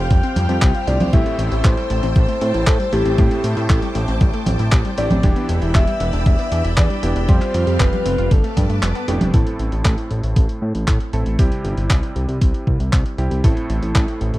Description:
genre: italo disco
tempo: 117 BPM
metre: 4/4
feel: straight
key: A minor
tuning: A4 = 441 Hz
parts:
  - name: soft octave-layered synth lead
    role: melody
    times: 0.0-8.8 s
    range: G4 to G5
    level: -24 LUFS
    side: left 2 dB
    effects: chorus, cassette tape, tape echo
  - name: string machine, full ensemble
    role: sustained chords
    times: 0.0-9.3 s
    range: C4 to F6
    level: -29 LUFS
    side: equal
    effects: ensemble chorus
  - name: wide unison pluck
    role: arpeggios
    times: 0.0-9.3 s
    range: G3 to F5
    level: -28 LUFS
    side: left 2 dB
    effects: tape echo
  - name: warm electric grand piano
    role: stabs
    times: 0.0-14.4 s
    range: A2 to A4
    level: -26 LUFS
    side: right 1 dB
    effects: low-pass filter, tape echo
  - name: fat analog bass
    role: bass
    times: 0.0-14.4 s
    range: E1 to A2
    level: -20 LUFS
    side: equal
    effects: tube saturation
  - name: dusty soul sampler-style drum kit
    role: drums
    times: 0.1-14.4 s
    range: congas, handclaps, hi-hat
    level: -24 LUFS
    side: right 1 dB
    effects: none
  - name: electronic kick drum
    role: drums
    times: 0.1-14.1 s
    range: none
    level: -16 LUFS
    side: equal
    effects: none
room: little or no reverb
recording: dry, close 1970s-style studio recording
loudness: -15 LUFS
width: side -17 dB against mid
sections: 0.0-9.3 A section; 9.3-14.4 B section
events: break 8.8-9.3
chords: 0.0 Fsus2; 1.1 Am7; 5.2 Em7; 7.3 Fsus2; 8.3 Gadd9; 9.3 Am; 11.4 C; 13.4 Am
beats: 0.11 0.62 | 1.13 1.65 2.16 2.67 | 3.18 3.70 4.21 4.72 | 5.24 5.75 6.26 6.77 | 7.29 7.80 8.31 8.82 | 9.34 9.85 10.36 10.88 | 11.39 11.90 12.41 12.93 | 13.44 13.95

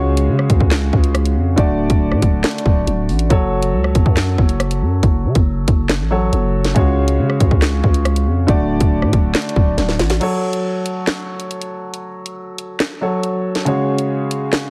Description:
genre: hip hop, drill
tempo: 139 BPM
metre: 4/4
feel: half-time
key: F# minor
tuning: A4 = 440 Hz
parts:
  - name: clear concert grand piano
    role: accompaniment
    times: 0.0-14.7 s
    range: C#3 to D5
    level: -22 LUFS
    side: equal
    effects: none
  - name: growling 808-style bass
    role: bass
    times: 0.0-10.2 s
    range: D1 to C#3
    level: -20 LUFS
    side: equal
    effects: none
  - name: drill drum kit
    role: drums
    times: 0.2-14.6 s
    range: crash cymbal, handclaps, hi-hat, kick drum, rim click, snare drum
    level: -19 LUFS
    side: equal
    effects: none
room: digital ambience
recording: heavily compressed radio sound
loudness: -16 LUFS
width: mono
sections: 0.0-10.2 A section; 10.2-14.7 B section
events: drum fill 9.8-10.2; break 10.2-14.7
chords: 0.0 C#sus4; 1.6 D; 3.3 F#m; 6.8 C#sus4; 8.5 D; 10.2 F#m; 13.7 C#sus4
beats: 0.28 0.71 1.15 | 1.58 2.01 2.44 2.87 | 3.30 3.73 4.17 4.60 | 5.03 5.46 5.89 6.33 | 6.76 7.19 7.62 8.05 | 8.48 8.91 9.35 9.78 | 10.21 10.64 11.07 11.51 | 11.94 12.37 12.80 13.23 | 13.66 14.10 14.53

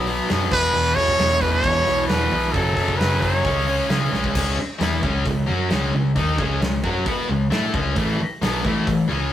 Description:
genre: hard rock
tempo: 133 BPM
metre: 4/4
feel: straight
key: C# minor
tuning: A4 = 436 Hz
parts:
  - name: sludgy distorted guitar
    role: riff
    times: 0.0-9.3 s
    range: E2 to B4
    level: -30 LUFS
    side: right 3 dB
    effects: overdrive
  - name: sludgy distorted guitar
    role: riff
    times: 0.0-9.3 s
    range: E2 to B4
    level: -27 LUFS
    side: equal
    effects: overdrive
  - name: tight distorted guitar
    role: riff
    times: 0.0-9.3 s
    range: E2 to B4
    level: -24 LUFS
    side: left 3 dB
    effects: distortion
  - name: overdriven picked electric bass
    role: bass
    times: 0.0-9.3 s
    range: E1 to C#3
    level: -25 LUFS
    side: equal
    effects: none
  - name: huge arena drum kit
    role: drums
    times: 0.1-9.0 s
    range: crash cymbal, hi-hat, kick drum, snare drum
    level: -26 LUFS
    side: equal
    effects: none
  - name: bright trumpet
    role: melody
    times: 0.5-3.9 s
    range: A4 to C#5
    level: -20 LUFS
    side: right 1 dB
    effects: none
room: moderate studio reverb, RT60 0.6 s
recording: rough rehearsal-room recording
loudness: -18 LUFS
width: side -11 dB against mid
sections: 0.0-4.3 A section; 4.3-9.3 B section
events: drum fill 4.1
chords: 0.0 B5; 0.5 E5; 2.5 F#m; 3.4 C#5; 4.3 C#m; 8.0 A5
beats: 0.29 | 0.74 1.19 1.64 2.09 | 2.54 2.99 3.45 3.90 | 4.35 4.80 5.25 5.70 | 6.16 6.61 7.06 7.51 | 7.97 8.42 8.87

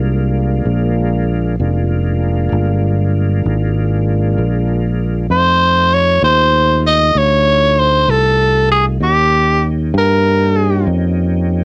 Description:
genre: slow blues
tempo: 65 BPM (dotted quarters)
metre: 12/8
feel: straight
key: Bb mixolydian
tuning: A4 = 440 Hz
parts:
  - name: tonewheel organ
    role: sustained chords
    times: 0.0-11.6 s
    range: Ab3 to G4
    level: -25 LUFS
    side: equal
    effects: slow rotary speaker, chorus vibrato, cassette tape
  - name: fingered electric bass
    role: bass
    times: 0.0-11.6 s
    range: F1 to G2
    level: -17 LUFS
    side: equal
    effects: none
  - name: growling tenor saxophone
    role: melody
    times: 5.3-10.8 s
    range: G4 to Eb5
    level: -14 LUFS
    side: equal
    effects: cassette tape
room: light reverb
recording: home recording on cassette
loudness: -14 LUFS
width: mono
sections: 0.0-11.6 A section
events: none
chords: 0.0 Bb7; 5.3 F7; 9.0 Eb7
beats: 0.66 | 1.59 2.52 3.44 4.37 | 5.30 6.23 7.16 8.09 | 9.02 9.94 10.87

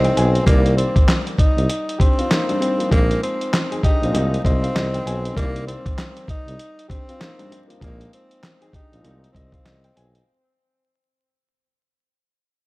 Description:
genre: hip hop, boom-bap hip-hop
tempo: 98 BPM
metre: 4/4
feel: swing 61% on 16ths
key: C minor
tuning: A4 = 440 Hz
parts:
  - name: breathy tenor saxophone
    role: melody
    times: 0.0-10.2 s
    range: Bb3 to Eb4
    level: -24 LUFS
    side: equal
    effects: tape echo
  - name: warm upright piano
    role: accompaniment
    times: 0.0-10.3 s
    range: D3 to Ab5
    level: -27 LUFS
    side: left 2 dB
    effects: none
  - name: warm tuba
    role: bass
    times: 0.0-10.2 s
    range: Bb1 to C2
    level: -20 LUFS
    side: equal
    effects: none
  - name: dusty soul sampler-style drum kit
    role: drums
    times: 0.0-10.3 s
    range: handclaps, hi-hat, kick drum, snare drum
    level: -19 LUFS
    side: equal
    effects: none
room: small room ambience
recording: dry, gritty hardware recording, transformer saturation, vinyl crackle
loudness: -16 LUFS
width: side -22 dB against mid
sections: 0.0-10.3 A section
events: fade-out 0.0-10.3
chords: 0.5 Cm7; 2.9 Bb7sus4; 4.1 Ab6/C; 5.4 Cm7; 7.8 Bb7sus4; 9.0 Ab6/C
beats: | 0.47 1.08 1.69 2.30 | 2.92 3.53 4.14 4.75 | 5.37 5.98 6.59 7.20 | 7.81 8.43 9.04 9.65

